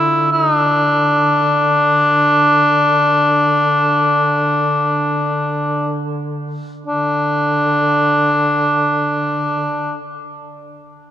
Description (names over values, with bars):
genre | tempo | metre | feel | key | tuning
caucasian folk, Caucasian lament | free time | none | none | unclear | A4 = 440 Hz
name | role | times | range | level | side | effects
warm cor anglais | melody | 0.0-10.0 s | D4 to E4 | -14 LUFS | left 1 dB | none
mellow duduk | drone | 0.0-9.9 s | D3 | -22 LUFS | equal | none
room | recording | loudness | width
moderate cathedral reverb, RT60 4.4 s | minimal, uncompressed stereo recording | -13 LUFS | side -11 dB against mid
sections
0.0-6.9 A section; 6.9-11.1 B section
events
slowing down 0.0-6.9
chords
none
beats
free time